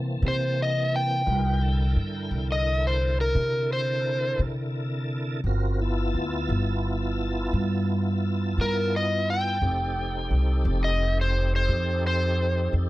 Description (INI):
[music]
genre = slow blues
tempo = 58 BPM (dotted quarters)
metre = 12/8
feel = straight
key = C mixolydian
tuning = A4 = 440 Hz
[part]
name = tonewheel organ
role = sustained chords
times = 0.0-12.9 s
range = D3 to A5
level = -32 LUFS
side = equal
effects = overdrive, chorus vibrato, slow rotary speaker
[part]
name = upright bass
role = bass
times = 0.0-12.9 s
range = F1 to C3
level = -25 LUFS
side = equal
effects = none
[part]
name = overdriven slide guitar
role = melody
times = 0.3-12.7 s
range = Bb4 to G5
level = -27 LUFS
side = left 1 dB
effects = none
[sound]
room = small room ambience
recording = dry, close 1970s-style studio recording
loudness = -23 LUFS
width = side -17 dB against mid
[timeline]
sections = 0.0-12.9 A section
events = electric slide guitar solo 0.0-12.9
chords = 0.0 C13; 5.4 G13; 9.6 F9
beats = 0.23 | 1.27 2.32 3.36 4.41 | 5.45 6.49 7.53 8.57 | 9.62 10.66 11.70 12.74